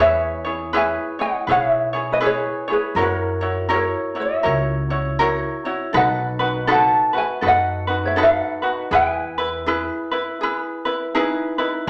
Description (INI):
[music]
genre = Hawaiian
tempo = 81 BPM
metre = 4/4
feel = swing 61% on 8ths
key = E major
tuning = A4 = 440 Hz
[part]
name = ukulele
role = melody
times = 0.0-11.1 s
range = F#4 to A5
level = -22 LUFS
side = equal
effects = none
[part]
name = ukulele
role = accompaniment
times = 0.0-11.9 s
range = D#4 to C#5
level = -24 LUFS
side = equal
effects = none
[part]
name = upright bass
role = bass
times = 0.0-11.9 s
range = B1 to F#2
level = -30 LUFS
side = equal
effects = none
[sound]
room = wet large studio reverb, RT60 0.9 s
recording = none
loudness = -20 LUFS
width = mono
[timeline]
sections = 0.0-11.9 A section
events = none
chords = 0.0 E6; 3.0 F#7; 5.9 B7; 8.9 Emaj7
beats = | 0.00 0.74 1.49 2.23 | 2.97 3.72 4.46 5.20 | 5.95 6.69 7.43 8.17 | 8.92 9.66 10.40 11.14 | 11.88